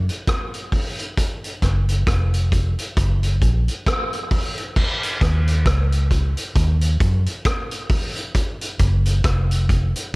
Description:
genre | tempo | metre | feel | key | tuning
dub reggae | 67 BPM | 4/4 | swing 58% on 16ths | unclear | A4 = 440 Hz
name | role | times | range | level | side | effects
vintage muted fingered electric bass | bass | 0.0-9.9 s | F1 to Gb2 | -18 LUFS | equal | none
vintage drum kit | drums | 0.1-10.1 s | crash cymbal, hi-hat, kick drum, rim click | -21 LUFS | equal | none
room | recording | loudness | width
little or no reverb | none | -18 LUFS | side -26 dB against mid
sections
0.0-4.8 A section; 4.8-10.2 B section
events
none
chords
none

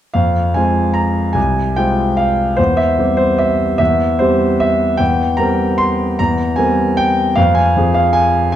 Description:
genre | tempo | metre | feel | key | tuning
classical, piano waltz | 149 BPM | 3/4 | rubato | F minor | A4 = 437 Hz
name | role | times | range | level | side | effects
warm concert grand piano | solo | 0.1-8.6 s | C2 to C6 | -12 LUFS | equal | none
room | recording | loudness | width
wet recital hall reverb, RT60 1.8 s | none | -12 LUFS | side -11 dB against mid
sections
0.2-8.6 A section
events
none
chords
0.2 Fm; 2.6 C/E; 5.0 C7/E; 7.4 Fm

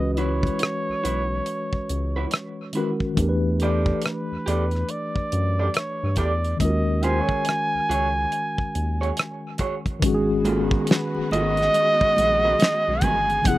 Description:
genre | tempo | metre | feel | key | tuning
R&B, neo-soul | 70 BPM | 4/4 | swing 64% on 16ths | G# minor from 10.0 s | A4 = 440 Hz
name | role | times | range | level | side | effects
warm flugelhorn | melody | 0.0-13.6 s | B4 to G#5 | -24 LUFS | right 1 dB | slapback echo
mellow tine electric piano | accompaniment | 0.0-13.6 s | C#3 to B4 | -26 LUFS | left 2 dB | medium stereo tremolo, slapback echo
round analog bass | bass | 0.0-13.6 s | F#1 to G2 | -26 LUFS | equal | none
electric guitar through a small old amp | second line | 0.2-13.2 s | B3 to D5 | -29 LUFS | right 4 dB | slapback echo
damped 70s drum kit | drums | 0.2-13.6 s | hi-hat, kick drum, rim click, snare drum | -24 LUFS | equal | none
dark studio string section | sustained chords | 10.0-13.6 s | E3 to G#4 | -33 LUFS | left 1 dB | none
congas | percussion | 10.0-13.6 s | none | -33 LUFS | right 1 dB | none
room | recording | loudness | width
little or no reverb | recorded outdoors, with no room sound | -20 LUFS | side -16 dB against mid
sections
0.0-10.0 A section; 10.0-13.6 B section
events
none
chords
0.0 C#m11; 3.2 Em11; 6.6 D#m7; 10.0 G#m9

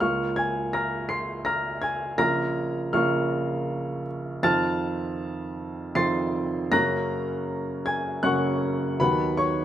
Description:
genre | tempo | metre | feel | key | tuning
classical, romantic character piece for solo piano | 80 BPM | 3/4 | rubato | Bb minor | A4 = 438 Hz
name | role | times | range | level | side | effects
clear baby grand piano | solo | 0.0-9.6 s | Bb1 to C7 | -24 LUFS | equal | none
room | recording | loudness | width
light reverb | minimal, uncompressed stereo recording | -24 LUFS | side -11 dB against mid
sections
0.0-9.6 A section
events
none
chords
0.0 Bbm/Db; 2.2 Bbm; 4.4 F7; 6.7 Gb; 9.0 B/D#

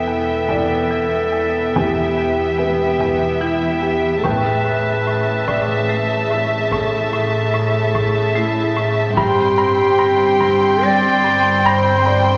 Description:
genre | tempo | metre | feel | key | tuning
cinematic, suspense film score | 73 BPM | 3/4 | straight | E minor | A4 = 440 Hz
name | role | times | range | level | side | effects
warm chamber violin section | melody | 0.0-12.4 s | G5 to C6 | -28 LUFS | equal | none
mellow clarinet | second line | 0.0-12.4 s | E4 to D5 | -22 LUFS | equal | none
warm chamber violin section | second line | 0.0-12.4 s | E5 to G5 | -24 LUFS | equal | none
dark chamber viola section | accompaniment | 0.0-12.4 s | C#3 to C4 | -28 LUFS | equal | none
dark chamber double bass section | bass | 0.0-12.4 s | E1 to A1 | -31 LUFS | equal | none
warm chamber cello section | bass | 0.0-12.4 s | E2 to A2 | -30 LUFS | equal | none
buzzing marimba with hard mallets | riff | 0.1-12.3 s | E2 to A3 | -25 LUFS | equal | none
taiko ensemble | drums | 0.5-11.2 s | none | -30 LUFS | equal | none
felt-muted upright piano | texture | 0.5-12.4 s | B3 to G5 | -30 LUFS | equal | none
room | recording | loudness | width
wet scoring stage reverb, RT60 1.5 s | none | -17 LUFS | mono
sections
0.0-12.4 A section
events
none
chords
0.0 Em; 4.2 A; 9.2 Gsus4

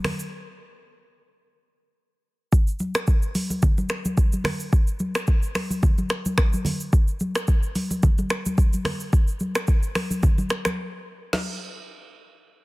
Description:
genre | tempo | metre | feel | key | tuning
afrobeats | 109 BPM | 4/4 | swing 55% on 16ths | none | none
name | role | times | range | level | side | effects
afro-pop drum kit | drums | 0.0-11.5 s | crash cymbal, finger snaps, hi-hat, kick drum, rim click, shaker, snare drum | -21 LUFS | equal | overdrive, soft clipping on snare
congas | percussion | 0.0-11.6 s | none | -28 LUFS | equal | none
room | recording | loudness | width
little or no reverb | dense, heavily limited modern master | -21 LUFS | side -21 dB against mid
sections
0.0-11.3 A section; 11.3-12.6 B section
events
break 0.3-2.5, 10.8-11.3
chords
none

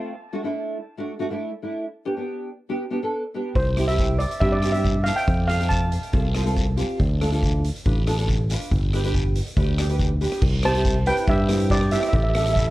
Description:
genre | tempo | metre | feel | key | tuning
calypso | 140 BPM | 4/4 | straight | C major | A4 = 437 Hz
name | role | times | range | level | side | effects
nylon-string guitar | accompaniment | 0.0-12.7 s | A3 to D5 | -28 LUFS | right 1 dB | double-tracked left and right
steel pan | melody | 3.6-6.5, 10.7-12.7 s | G4 to A5 | -25 LUFS | right 1 dB | tape echo
fingered electric bass | bass | 3.6-12.7 s | G1 to G2 | -22 LUFS | equal | none
street-band drum kit | drums | 3.6-12.7 s | crash cymbal, hi-hat, kick drum, rim click | -24 LUFS | equal | none
guiro | percussion | 3.6-12.7 s | none | -36 LUFS | left 3 dB | none
room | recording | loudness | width
light reverb | worn, warbling old tape, cassette tape, warbly pitch drift | -20 LUFS | side -17 dB against mid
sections
0.0-10.4 A section; 10.4-12.7 B section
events
none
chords
0.1 D; 1.8 G; 3.6 C; 5.3 F; 7.0 Dm; 8.7 G; 10.4 C; 12.1 A

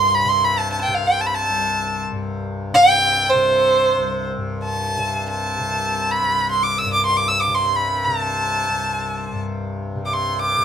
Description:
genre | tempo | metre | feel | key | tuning
indian classical, Hindustani | free time | none | none | C raga bilaval | A4 = 440 Hz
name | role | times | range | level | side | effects
clear violin | melody | 0.0-10.6 s | C5 to E6 | -17 LUFS | right 1 dB | none
tanpura | drone | 0.0-10.6 s | C2 to C3 | -26 LUFS | left 2 dB | none
room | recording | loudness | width
moderate large studio reverb, RT60 0.8 s | band playing live in one room | -17 LUFS | side -8 dB against mid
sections
0.0-4.4 A section; 4.4-10.6 A section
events
none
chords
none

